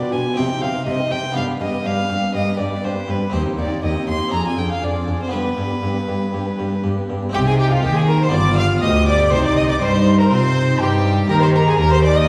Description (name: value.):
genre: classical, baroque-style concerto movement with solo episodes.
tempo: 121 BPM.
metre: 4/4.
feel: straight.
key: C minor.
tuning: A4 = 440 Hz.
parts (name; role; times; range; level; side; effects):
rich violin; melody; 0.0-12.3 s; F4 to C6; -26 LUFS; equal; none.
warm chamber violin section; melody; 0.0-12.3 s; B4 to F6; -29 LUFS; equal; none.
warm chamber violin section; second line; 0.0-12.3 s; Eb4 to F5; -28 LUFS; equal; none.
dark chamber viola section; accompaniment; 0.0-12.3 s; B3 to G4; -28 LUFS; equal; none.
harpsichord; accompaniment; 0.0-12.3 s; D2 to Ab4; -28 LUFS; equal; none.
rich chamber cello section; bass; 0.1-12.3 s; D2 to C4; -24 LUFS; equal; none.
rich chamber double bass section; bass; 7.3-12.3 s; G1 to C3; -22 LUFS; equal; none.
room: wet recital hall reverb, RT60 1.6 s.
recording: heard from further back in the room, vinyl crackle.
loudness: -18 LUFS.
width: mono.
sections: 0.0-7.3 A section; 7.3-12.3 B section.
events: none.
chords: 0.4 Cm; 1.4 G; 3.3 Cm/Eb; 4.3 Dm7b5/F; 5.3 G; 7.3 Cm; 8.3 G7; 9.3 Cm; 11.3 Eb.